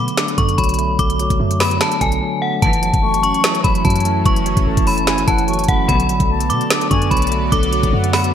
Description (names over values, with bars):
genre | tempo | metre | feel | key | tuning
hip hop, trap | 147 BPM | 4/4 | half-time | F# minor | A4 = 440 Hz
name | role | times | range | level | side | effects
metallic FM bell | melody | 0.0-8.3 s | F#5 to D6 | -19 LUFS | left 2 dB | chorus, low-pass filter
tine electric piano | accompaniment | 0.0-8.3 s | D3 to E4 | -21 LUFS | right 1 dB | medium stereo tremolo, low-pass filter
clean 808-style bass | bass | 0.0-8.3 s | F#1 to B2 | -21 LUFS | equal | none
trap drum kit | drums | 0.1-8.3 s | hi-hat, kick drum, snare drum | -18 LUFS | equal | gated reverb
sweeping resonant pad | sustained chords | 2.6-8.3 s | F#3 to D5 | -26 LUFS | right 1 dB | chorus
warm studio string section | stabs | 2.6-2.9, 5.9-6.2 s | C#2 to F#3 | -26 LUFS | left 3 dB | none
concert flute | second line | 3.0-8.3 s | F#5 to C#6 | -26 LUFS | left 4 dB | ping-pong delay
room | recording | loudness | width
moderate lush hall reverb, RT60 2.0 s | bright 1980s-style digital production | -14 LUFS | side -9 dB against mid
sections
0.0-2.6 A section; 2.6-8.3 B section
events
break 2.2-2.6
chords
0.0 Bm7; 2.6 F#m7; 5.9 Bm7